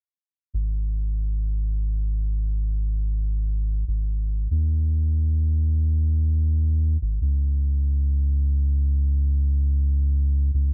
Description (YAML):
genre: trip hop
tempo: 72 BPM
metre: 4/4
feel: straight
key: unclear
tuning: A4 = 441 Hz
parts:
  - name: soft dub sub bass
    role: bass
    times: 0.5-10.7 s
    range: G#1 to D#2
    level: -23 LUFS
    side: equal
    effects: none
room: little or no reverb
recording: dry, gritty hardware recording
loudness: -24 LUFS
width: mono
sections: 0.5-10.7 A section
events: none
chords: none